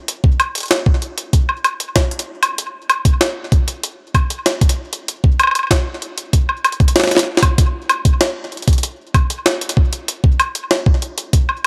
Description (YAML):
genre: IDM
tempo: 96 BPM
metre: 4/4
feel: straight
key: none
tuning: none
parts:
  - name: jungle sampler-style drum kit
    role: drums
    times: 0.1-11.7 s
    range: hi-hat, snare drum, woodblock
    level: -19 LUFS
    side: equal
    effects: digital delay
  - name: electronic kick drum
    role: drums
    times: 0.2-11.5 s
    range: none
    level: -16 LUFS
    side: equal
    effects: none
room: light reverb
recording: none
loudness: -17 LUFS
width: mono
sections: 0.0-11.7 A section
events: drum fill 7.0-7.6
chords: none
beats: | 0.08 0.71 1.33 1.96 | 2.58 3.21 3.83 4.46 | 5.08 5.71 6.33 6.96 | 7.58 8.21 8.83 9.46 | 10.08 10.71 11.33